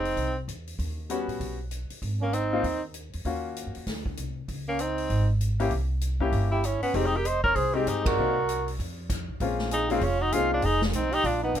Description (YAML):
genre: jazz, small-group swing and bop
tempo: 195 BPM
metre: 4/4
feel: swing 61% on 8ths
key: F minor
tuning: A4 = 440 Hz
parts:
  - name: clear tenor saxophone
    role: melody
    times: 0.0-11.6 s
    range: G3 to C5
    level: -28 LUFS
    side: left 1 dB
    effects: none
  - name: breathy trumpet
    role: second line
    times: 0.0-11.6 s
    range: Bb3 to Eb5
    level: -30 LUFS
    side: right 5 dB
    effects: none
  - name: upright bass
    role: bass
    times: 0.0-11.6 s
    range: F1 to Bb2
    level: -30 LUFS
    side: equal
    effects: none
  - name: swinging big-band drum kit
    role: drums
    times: 0.1-11.6 s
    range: crash cymbal, hi-hat, kick drum, ride cymbal, snare drum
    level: -35 LUFS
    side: equal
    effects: none
  - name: bright upright piano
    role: accompaniment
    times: 1.1-10.6 s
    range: G3 to G4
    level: -29 LUFS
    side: left 5 dB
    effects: none
room: light reverb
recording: minimal, uncompressed stereo recording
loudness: -25 LUFS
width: side -10 dB against mid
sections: 0.0-9.4 A section; 9.4-11.6 B section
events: band accent 8.0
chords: 0.0 F7(no3); 0.8 Eb7alt; 2.0 Ab; 3.2 Ebm7; 3.9 Csus2; 4.5 Dbsus2; 5.7 C7b9; 6.9 Fm7; 8.2 Cm7b5; 8.8 N.C.; 9.4 Bbm7; 10.6 Fm9b5